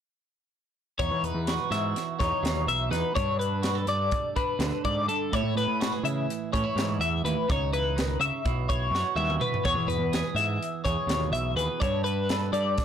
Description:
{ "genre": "math rock and midwest emo", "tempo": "250 BPM (eighths)", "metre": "9/8", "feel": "straight", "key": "unclear", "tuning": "A4 = 440 Hz", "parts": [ { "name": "clean electric guitar", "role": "accompaniment", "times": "1.0-12.8 s", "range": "E2 to A4", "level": "-32 LUFS", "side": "right 13 dB", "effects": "none" }, { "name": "twelve-string electric guitar", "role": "arpeggios", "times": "1.0-12.8 s", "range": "A4 to E5", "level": "-28 LUFS", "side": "left 4 dB", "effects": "phaser" }, { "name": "growling picked electric bass", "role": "bass", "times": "1.0-12.8 s", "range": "B1 to E3", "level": "-30 LUFS", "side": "equal", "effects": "overdrive" }, { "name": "crisp fusion drum kit", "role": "drums", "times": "1.0-12.8 s", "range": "hi-hat, kick drum, snare drum, toms", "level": "-32 LUFS", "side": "equal", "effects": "none" } ], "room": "light reverb", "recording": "blown-out, overdriven recording, overdrive", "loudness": "-25 LUFS", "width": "side -8 dB against mid", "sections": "1.0-12.8 A section", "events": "drum fill 8.9-9.6", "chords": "1.0 Emaj7sus2; 3.2 Gmaj7; 5.3 Amaj9; 7.5 C#m9; 8.4 Bsus4; 9.6 Emaj9; 11.8 G", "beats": "| 0.99 1.23 1.47 1.71 1.95 2.19 2.43 2.67 2.91 | 3.15 3.39 3.63 3.87 4.11 4.35 4.59 4.83 5.07 | 5.31 5.55 5.79 6.04 6.28 6.51 6.76 7.00 7.24 | 7.48 7.72 7.96 8.20 8.44 8.68 8.92 9.16 9.40 | 9.64 9.88 10.12 10.36 10.60 10.84 11.09 11.33 11.57 | 11.81 12.05 12.29 12.53 12.77" }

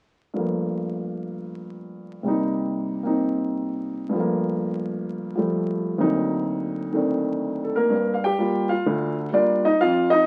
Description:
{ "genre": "solo jazz", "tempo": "128 BPM", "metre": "4/4", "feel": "swing 66% on 8ths, rubato", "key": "G minor", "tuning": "A4 = 442 Hz", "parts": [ { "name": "warm baby grand piano", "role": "solo", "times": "0.3-10.3 s", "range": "D2 to G5", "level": "-24 LUFS", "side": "equal", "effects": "none" } ], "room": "moderate club reverb, RT60 0.6 s", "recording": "very old 78 rpm record, vinyl crackle", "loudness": "-24 LUFS", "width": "mono", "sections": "0.4-7.9 A section; 7.9-10.3 B section", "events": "none", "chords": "0.4 Gm9; 2.3 Cm7; 4.1 Gm9; 6.0 D7b9b13; 7.9 Gm7", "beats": "| 0.36 0.84 1.32 1.79 | 2.26 2.73 3.20 3.67 | 4.13 4.60 5.07 5.53 | 6.00 6.46 6.94 7.42 | 7.91 8.39 8.87 9.34 | 9.81" }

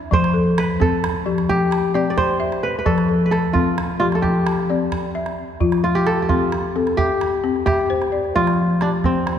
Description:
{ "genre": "west african traditional, West African string and xylophone music", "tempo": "87 BPM (dotted quarters)", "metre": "12/8", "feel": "straight", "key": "F lydian", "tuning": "A4 = 440 Hz", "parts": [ { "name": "kora", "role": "melody", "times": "0.0-9.4 s", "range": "C4 to D5", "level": "-21 LUFS", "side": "right 1 dB", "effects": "none" }, { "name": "balafon", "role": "arpeggios", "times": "0.0-9.4 s", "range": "F3 to A5", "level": "-20 LUFS", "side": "left 3 dB", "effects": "none" }, { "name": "calabash", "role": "percussion", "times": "0.1-9.4 s", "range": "none", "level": "-25 LUFS", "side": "right 4 dB", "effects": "none" } ], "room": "wet concert hall reverb, RT60 2.6 s", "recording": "recorded in a church or concert hall", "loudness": "-17 LUFS", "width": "side -8 dB against mid", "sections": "0.0-5.6 A section; 5.6-9.4 B section", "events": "none", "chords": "0.1 F; 1.5 C; 2.9 F; 4.2 C; 5.6 F; 7.0 C; 8.4 F5", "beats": "| 0.12 0.81 1.49 2.18 | 2.86 3.55 4.23 4.92 | 5.61 6.29 6.98 7.67 | 8.35 9.04" }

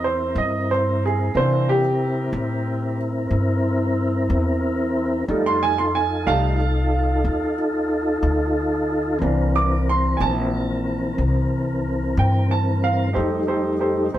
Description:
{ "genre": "slow blues", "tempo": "61 BPM (dotted quarters)", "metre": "12/8", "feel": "straight", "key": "unclear", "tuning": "A4 = 441 Hz", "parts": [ { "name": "clear upright piano", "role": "accompaniment", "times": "0.0-14.2 s", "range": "E3 to D6", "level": "-23 LUFS", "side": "right 3 dB", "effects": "none" }, { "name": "tonewheel organ", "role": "sustained chords", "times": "0.0-14.1 s", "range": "E3 to Bb4", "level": "-23 LUFS", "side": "left 1 dB", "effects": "slow rotary speaker, chorus vibrato" }, { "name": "upright bass", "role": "bass", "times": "0.0-14.2 s", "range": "Bb1 to C3", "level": "-23 LUFS", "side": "left 1 dB", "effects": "none" } ], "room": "light reverb", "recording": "band playing live in one room", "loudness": "-19 LUFS", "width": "side -12 dB against mid", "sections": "0.0-13.2 A section; 13.2-14.2 A section", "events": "upright piano solo 0.0-13.2; tonewheel organ solo 13.2-14.2", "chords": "0.0 C7; 5.3 F7; 9.2 C7; 13.2 F7", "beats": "0.37 | 1.35 2.34 3.32 4.30 | 5.29 6.27 7.25 8.23 | 9.22 10.20 11.18 12.17 | 13.15 14.13" }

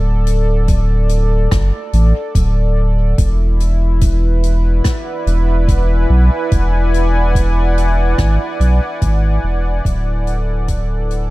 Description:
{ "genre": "ambient dub", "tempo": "72 BPM", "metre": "4/4", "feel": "swing 55% on 16ths", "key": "E mixolydian", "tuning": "A4 = 441 Hz", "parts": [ { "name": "warm analog pad", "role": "sustained chords", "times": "0.0-11.3 s", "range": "E4 to G#5", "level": "-21 LUFS", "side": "equal", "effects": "chorus" }, { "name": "warm sub bass", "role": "bass", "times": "0.0-11.3 s", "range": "D1 to B1", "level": "-13 LUFS", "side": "equal", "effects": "none" }, { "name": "soft-mallet drum kit", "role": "drums", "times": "0.3-11.3 s", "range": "hi-hat, rim click", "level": "-30 LUFS", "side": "left 2 dB", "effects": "none" }, { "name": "electronic kick drum", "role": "drums", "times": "0.7-10.9 s", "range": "none", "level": "-16 LUFS", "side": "equal", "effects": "none" } ], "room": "studio reverb", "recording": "dark, warm production", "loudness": "-12 LUFS", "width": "side -19 dB against mid", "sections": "0.0-11.3 A section", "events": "fade-out 7.6-11.3", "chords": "0.0 D; 3.2 E7; 9.9 D", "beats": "0.68 1.52 2.35 | 3.18 4.02 4.85 5.68 | 6.52 7.35 8.18 9.02 | 9.85 10.68" }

